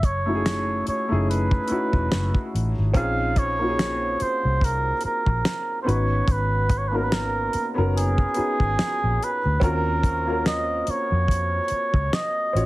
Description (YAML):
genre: R&B, neo-soul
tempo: 72 BPM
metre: 4/4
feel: swing 57% on 16ths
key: unclear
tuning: A4 = 440 Hz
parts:
  - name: trumpet with cup mute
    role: melody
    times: 0.0-12.7 s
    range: Ab4 to F5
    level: -25 LUFS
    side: right 1 dB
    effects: slapback echo, plate reverb
  - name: vintage muted fingered electric bass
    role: bass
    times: 0.0-12.7 s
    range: Fb1 to F2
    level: -25 LUFS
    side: equal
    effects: none
  - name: damped 70s drum kit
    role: drums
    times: 0.0-12.7 s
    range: finger snaps, hi-hat, kick drum, snare drum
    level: -23 LUFS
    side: equal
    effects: none
  - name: warm upright piano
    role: accompaniment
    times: 0.3-12.7 s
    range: A3 to Db5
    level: -28 LUFS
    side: left 1 dB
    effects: plate reverb
room: light reverb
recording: heavily compressed radio sound, multiband compression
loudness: -20 LUFS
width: side -18 dB against mid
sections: 0.0-12.7 A section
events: none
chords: 0.0 Gbm9; 2.9 Bbm9; 5.9 Abm9; 9.6 Ebm9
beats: 0.45 1.28 2.11 | 2.95 3.78 4.61 5.45 | 6.28 7.11 7.95 8.78 | 9.61 10.45 11.28 12.11